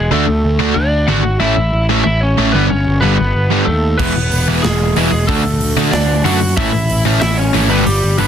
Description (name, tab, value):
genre	punk rock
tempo	186 BPM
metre	4/4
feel	straight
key	A major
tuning	A4 = 441 Hz
part	lightly driven lead guitar	melody	0.0-8.3 s	G3 to F#5	-18 LUFS	equal	none
part	fuzz picked electric bass	bass	0.0-8.3 s	E1 to F#2	-16 LUFS	equal	overdrive
part	cranked stack guitar	riff	0.1-8.3 s	E2 to D4	-18 LUFS	left 12 dB	overdrive
part	overdriven electric guitar	riff	0.1-8.3 s	G2 to F#4	-18 LUFS	right 11 dB	none
part	big rock drum kit	drums	4.0-8.3 s	crash cymbal, hi-hat, kick drum, snare drum	-20 LUFS	right 1 dB	none
room	little or no reverb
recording	dense, heavily limited modern master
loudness	-12 LUFS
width	side -9 dB against mid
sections	0.0-8.3 A section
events	half time 0.0-8.3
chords	0.1 D; 1.4 A; 2.5 G; 4.0 E; 5.3 D; 6.6 A; 7.7 G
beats	| 0.12 0.44 0.76 1.09 | 1.41 1.73 2.06 2.38 | 2.70 3.02 3.35 3.67 | 3.99 4.32 4.64 4.96 | 5.28 5.61 5.93 6.25 | 6.57 6.90 7.22 7.54 | 7.86 8.19